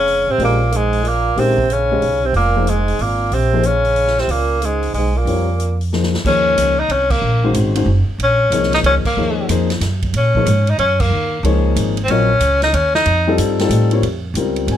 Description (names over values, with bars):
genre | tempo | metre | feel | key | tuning
modal jazz | 185 BPM | 3/4 | swing 64% on 8ths | Bb dorian, Eb dorian from 6.2 s | A4 = 440 Hz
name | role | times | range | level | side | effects
clear tenor saxophone | melody | 0.0-13.4 s | Ab3 to Eb4 | -16 LUFS | equal | none
clear trombone | second line | 0.0-5.8 s | Ab2 to Db3 | -23 LUFS | right 6 dB | none
upright bass | bass | 0.0-14.8 s | F1 to Bb2 | -18 LUFS | right 1 dB | none
swinging big-band drum kit | drums | 0.1-14.8 s | crash cymbal, hi-hat, kick drum, ride cymbal, snare drum | -26 LUFS | right 1 dB | none
warm concert grand piano | accompaniment | 0.4-14.8 s | Eb3 to Ab5 | -19 LUFS | left 5 dB | none
room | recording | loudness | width
light reverb | none | -14 LUFS | side -10 dB against mid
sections
0.0-6.2 A section; 6.2-14.0 B section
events
drum fill 5.9-6.2; band accent 7.1, 9.0, 11.0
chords
0.0 Bbm7; 6.2 Ebm11; 13.1 F7; 14.0 Bbm7